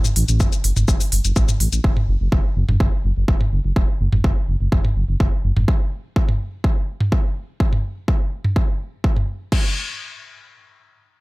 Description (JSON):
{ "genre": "melodic techno", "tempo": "125 BPM", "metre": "4/4", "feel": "straight", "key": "unclear", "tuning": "A4 = 440 Hz", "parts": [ { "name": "techno drum kit", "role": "drums", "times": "0.0-9.6 s", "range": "crash cymbal, hi-hat, shaker, toms", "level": "-22 LUFS", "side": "equal", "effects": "none" }, { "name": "dark detuned saw bass", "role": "bass", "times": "0.2-5.6 s", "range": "E1 to A1", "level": "-19 LUFS", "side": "equal", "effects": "sidechain pumping" }, { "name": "electronic kick drum", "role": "drums", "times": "0.4-9.6 s", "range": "none", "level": "-18 LUFS", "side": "equal", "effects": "overdrive" } ], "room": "little or no reverb", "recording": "none", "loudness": "-17 LUFS", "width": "side -22 dB against mid", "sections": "0.0-9.5 A section; 9.5-11.2 B section", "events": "none", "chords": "none", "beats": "0.40 0.88 1.36 | 1.84 2.32 2.80 3.28 | 3.76 4.24 4.72 5.20 | 5.68 6.16 6.64 7.12 | 7.60 8.08 8.56 9.04 | 9.52" }